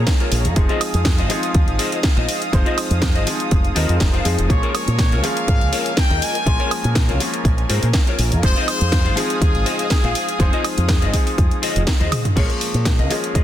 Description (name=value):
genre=nu-disco, nu disco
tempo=122 BPM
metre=4/4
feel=swing 53% on 16ths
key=Bb minor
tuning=A4 = 440 Hz
part: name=bright baby grand piano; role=accompaniment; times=0.0-13.4 s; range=F3 to C6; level=-25 LUFS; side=left 1 dB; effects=ping-pong delay
part: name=lush unison pad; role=sustained chords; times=0.0-12.3 s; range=Ab4 to Eb6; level=-30 LUFS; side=equal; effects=chorus, sidechain pumping
part: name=fingered electric bass with an envelope filter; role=bass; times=0.0-13.4 s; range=F1 to Bb2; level=-20 LUFS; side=equal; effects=none
part: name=electronic kick drum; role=drums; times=0.1-13.4 s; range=none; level=-18 LUFS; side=equal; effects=none
part: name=house drum kit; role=drums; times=0.1-13.4 s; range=crash cymbal, hi-hat, snare drum, toms, woodblock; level=-24 LUFS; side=right 1 dB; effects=none
part: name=mellow electric guitar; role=riff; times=0.2-13.4 s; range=F4 to F5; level=-27 LUFS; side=left 3 dB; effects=ensemble chorus, ping-pong delay
part: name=brilliant trumpet section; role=melody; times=4.5-11.9 s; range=Ab4 to Ab5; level=-25 LUFS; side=left 2 dB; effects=tape echo
room=light reverb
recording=dense, heavily limited modern master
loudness=-16 LUFS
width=side -12 dB against mid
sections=0.0-12.4 A section; 12.4-13.4 B section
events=drop 0.0-12.4; drum fill 12.0-12.4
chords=0.0 Bbm7; 0.6 Fm7; 4.5 Bbm7; 8.4 Fm7; 12.4 Bbm7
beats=0.07 | 0.56 1.05 1.55 2.04 | 2.53 3.02 3.51 4.01 | 4.50 4.99 5.48 5.97 | 6.46 6.96 7.45 7.94 | 8.43 8.92 9.42 9.91 | 10.40 10.89 11.38 11.88 | 12.37 12.86 13.35